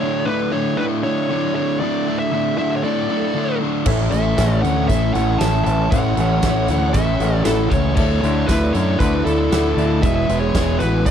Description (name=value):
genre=classic rock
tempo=117 BPM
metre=4/4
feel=straight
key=A major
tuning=A4 = 440 Hz
part: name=smooth overdriven lead guitar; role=melody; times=0.0-11.1 s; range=A4 to A5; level=-24 LUFS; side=equal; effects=slapback echo
part: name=tonewheel organ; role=sustained chords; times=0.0-11.1 s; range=G#3 to D5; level=-30 LUFS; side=right 2 dB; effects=none
part: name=overdriven semi-hollow guitar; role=riff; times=0.0-11.1 s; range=A2 to E4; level=-20 LUFS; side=equal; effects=none
part: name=dark smooth lead guitar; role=second line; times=2.8-11.1 s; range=E4 to E5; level=-27 LUFS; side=equal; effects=overdrive
part: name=dark upright piano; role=accompaniment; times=3.9-11.1 s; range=E4 to F#5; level=-29 LUFS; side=left 7 dB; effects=none
part: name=picked swing-style acoustic guitar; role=accompaniment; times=3.9-11.1 s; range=E2 to E4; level=-32 LUFS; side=right 12 dB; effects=none
part: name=growling fingered electric bass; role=bass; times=3.9-11.1 s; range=E1 to F#2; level=-20 LUFS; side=equal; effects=overdrive
part: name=huge arena drum kit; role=drums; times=3.9-11.1 s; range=crash cymbal, hi-hat, kick drum, snare drum, tambourine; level=-23 LUFS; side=equal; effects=none
room=little or no reverb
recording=dry, close 1970s-style studio recording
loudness=-16 LUFS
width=side -8 dB against mid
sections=0.0-11.1 A section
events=none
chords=0.0 Dsus2; 3.9 A; 8.0 Dsus2; 10.0 E